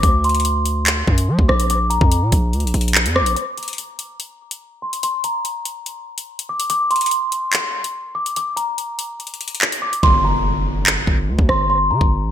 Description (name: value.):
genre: hip hop, drill.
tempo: 144 BPM.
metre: 4/4.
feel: half-time.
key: G minor.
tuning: A4 = 440 Hz.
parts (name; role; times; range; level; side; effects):
celesta; melody; 0.0-12.3 s; Bb5 to D6; -21 LUFS; left 1 dB; low-pass filter, ping-pong delay.
distorted 808-style bass; bass; 0.0-3.4, 10.0-12.3 s; G1 to F#3; -19 LUFS; equal; distortion.
drill drum kit; drums; 0.0-12.1 s; handclaps, hi-hat, kick drum, rim click; -18 LUFS; equal; gated reverb.
impact; sound effects; 10.0-11.7 s; none; -26 LUFS; equal; none.
room: light reverb, digital ambience.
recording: bright 1980s-style digital production.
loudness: -16 LUFS.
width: side -10 dB against mid.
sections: 0.0-3.4 A section; 3.4-10.0 B section; 10.0-12.3 C section.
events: filter sweep on celesta 3.4-10.0; hi-hats muted 10.0-12.3; impact 10.0-11.7.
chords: 0.0 D; 1.7 Bb; 3.4 N.C.; 10.0 Gm.